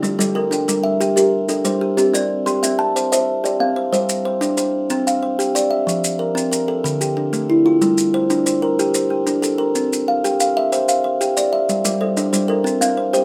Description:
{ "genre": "southern african traditional, mbira-style interlocking cycle", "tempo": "124 BPM (dotted quarters)", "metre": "12/8", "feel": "straight", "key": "G dorian", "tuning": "A4 = 440 Hz", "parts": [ { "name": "kalimba", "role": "arpeggios", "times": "0.0-13.2 s", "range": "D3 to A5", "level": "-20 LUFS", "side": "equal", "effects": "none" }, { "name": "kalimba", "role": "arpeggios", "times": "0.0-4.2, 11.8-13.2 s", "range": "G3 to C6", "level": "-23 LUFS", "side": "equal", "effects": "none" }, { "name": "maracas", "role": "percussion", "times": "0.0-13.2 s", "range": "none", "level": "-27 LUFS", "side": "equal", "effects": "none" } ], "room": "moderate studio reverb, RT60 0.6 s", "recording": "none", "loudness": "-18 LUFS", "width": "mono", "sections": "0.0-3.9 A section; 3.9-13.2 B section", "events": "none", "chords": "0.0 Gm; 2.0 C; 3.9 G5; 4.9 C; 5.9 F; 6.8 Dm; 7.8 Gm; 9.8 C; 11.7 Gm; 12.7 C5" }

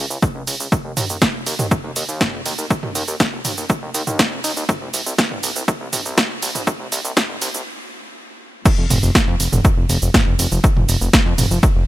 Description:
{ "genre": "melodic techno", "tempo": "121 BPM", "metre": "4/4", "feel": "straight", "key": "unclear", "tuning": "A4 = 438 Hz", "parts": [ { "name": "fat analog bass", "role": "bass", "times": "0.0-11.8 s", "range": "Eb1 to F2", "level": "-23 LUFS", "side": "equal", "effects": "sidechain pumping, high-pass filter" }, { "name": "punchy analog drum machine", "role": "drums", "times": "0.1-11.7 s", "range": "crash cymbal, hi-hat, shaker, snare drum, toms", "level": "-20 LUFS", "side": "right 1 dB", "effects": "overdrive" }, { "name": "electronic kick drum", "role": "drums", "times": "0.2-11.7 s", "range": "none", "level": "-17 LUFS", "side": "equal", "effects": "overdrive" } ], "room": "little or no reverb", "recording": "high-pass filter", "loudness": "-16 LUFS", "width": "side -15 dB against mid", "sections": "0.0-8.7 A section; 8.7-11.9 B section", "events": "build-up 0.0-8.7; stop 7.7-8.7; drop 8.7-11.9", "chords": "none" }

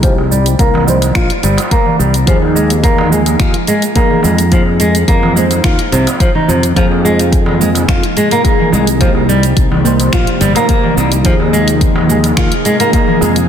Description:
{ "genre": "organic downtempo", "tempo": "107 BPM", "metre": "4/4", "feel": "straight", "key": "unclear", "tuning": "A4 = 441 Hz", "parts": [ { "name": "deep mellow chord stab", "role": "accompaniment", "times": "0.0-13.5 s", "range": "F3 to C5", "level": "-18 LUFS", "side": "right 2 dB", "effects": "chorus, phaser, sidechain pumping, ping-pong delay" }, { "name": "flamenco guitar", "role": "arpeggios", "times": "0.0-13.4 s", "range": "C3 to F4", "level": "-14 LUFS", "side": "equal", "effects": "low-pass filter, ping-pong delay" }, { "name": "sustaining fretless electric bass", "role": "bass", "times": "0.0-13.5 s", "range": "G1 to F2", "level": "-14 LUFS", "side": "equal", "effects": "ensemble chorus, sidechain pumping" }, { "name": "deep house drum kit", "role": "drums", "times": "0.0-13.5 s", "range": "cabasa, finger snaps, hi-hat", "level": "-20 LUFS", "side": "right 1 dB", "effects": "soft clipping on snare, small room ambience" }, { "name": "electronic kick drum", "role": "drums", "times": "0.0-13.0 s", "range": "none", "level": "-13 LUFS", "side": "equal", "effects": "small room ambience" }, { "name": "darbuka", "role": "percussion", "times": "0.2-13.3 s", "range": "none", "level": "-22 LUFS", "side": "right 4 dB", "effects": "none" }, { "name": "ethereal airy pad", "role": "sustained chords", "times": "7.8-13.5 s", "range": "C3 to Ab4", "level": "-18 LUFS", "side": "left 1 dB", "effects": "ensemble chorus, built-in reverb, sidechain pumping" } ], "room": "moderate echo chamber reverb, RT60 2.3 s", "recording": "dense, heavily limited modern master", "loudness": "-9 LUFS", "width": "side -8 dB against mid", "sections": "0.0-13.5 A section", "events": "filter sweep on nylon-string guitar 0.0-13.5", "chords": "0.0 Cm7; 2.3 Ebsus4; 4.5 Ab69; 9.0 Cm7; 11.2 Ebsus4" }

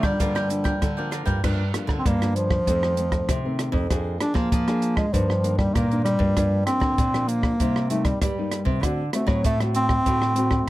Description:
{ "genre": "samba and choro", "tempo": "97 BPM", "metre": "4/4", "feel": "straight", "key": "G minor", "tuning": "A4 = 440 Hz", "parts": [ { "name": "clear bass clarinet", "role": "melody", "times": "0.0-10.7 s", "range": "F3 to D4", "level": "-23 LUFS", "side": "equal", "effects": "none" }, { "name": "cavaquinho", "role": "accompaniment", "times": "0.0-1.4 s", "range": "F4 to G5", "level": "-30 LUFS", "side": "right 2 dB", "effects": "none" }, { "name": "nylon-string guitar", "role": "accompaniment", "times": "0.0-10.7 s", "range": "F2 to Ab4", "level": "-30 LUFS", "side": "left 2 dB", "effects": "none" }, { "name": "nylon-string guitar", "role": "bass", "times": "0.0-10.6 s", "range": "F2 to G3", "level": "-26 LUFS", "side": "right 1 dB", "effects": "none" }, { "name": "compact cocktail drum kit", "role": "drums", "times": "0.0-10.7 s", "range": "crash cymbal, hi-hat, kick drum, rim click", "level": "-26 LUFS", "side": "equal", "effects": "none" } ], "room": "little or no reverb", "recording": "close, detailed microphones", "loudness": "-20 LUFS", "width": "side -16 dB against mid", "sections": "0.0-1.4 A section; 1.4-10.7 A section", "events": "none", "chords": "0.0 Gm7; 2.7 F7; 3.9 Bb7/F; 5.1 Ebmaj7/G; 6.4 Gm7; 7.6 Cm7; 8.8 D7" }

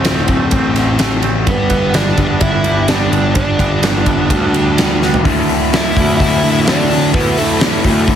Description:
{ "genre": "quiet-loud alternative rock", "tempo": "127 BPM", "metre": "4/4", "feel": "straight", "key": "unclear", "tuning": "A4 = 440 Hz", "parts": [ { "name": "fuzz lead guitar", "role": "melody", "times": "0.0-8.2 s", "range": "A3 to E5", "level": "-18 LUFS", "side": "equal", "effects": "distortion" }, { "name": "twangy electric guitar", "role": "arpeggios", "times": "0.0-5.3 s", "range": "D2 to D4", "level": "-23 LUFS", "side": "right 7 dB", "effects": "tremolo" }, { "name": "thick fuzz guitar", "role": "riff", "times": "0.0-8.2 s", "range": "D2 to E4", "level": "-20 LUFS", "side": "left 12 dB", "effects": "distortion" }, { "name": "fuzz picked electric bass", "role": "bass", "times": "0.0-8.2 s", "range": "D1 to D3", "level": "-18 LUFS", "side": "equal", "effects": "overdrive" }, { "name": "huge arena drum kit", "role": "drums", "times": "0.0-8.2 s", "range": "hi-hat, kick drum, ride cymbal, snare drum, toms", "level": "-16 LUFS", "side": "equal", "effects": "none" }, { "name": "fuzz guitar", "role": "riff", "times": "1.5-8.2 s", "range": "D2 to E4", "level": "-20 LUFS", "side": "right 12 dB", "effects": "distortion" }, { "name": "raw garage guitar", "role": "riff", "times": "5.3-8.2 s", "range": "D2 to E4", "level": "-21 LUFS", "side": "equal", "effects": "overdrive" } ], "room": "light reverb", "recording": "heavily compressed radio sound, multiband compression", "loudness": "-11 LUFS", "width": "side -9 dB against mid", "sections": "0.0-5.3 A section; 5.3-8.2 B section", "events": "drum fill 5.0", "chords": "0.0 D5; 1.5 G; 5.3 Dsus2" }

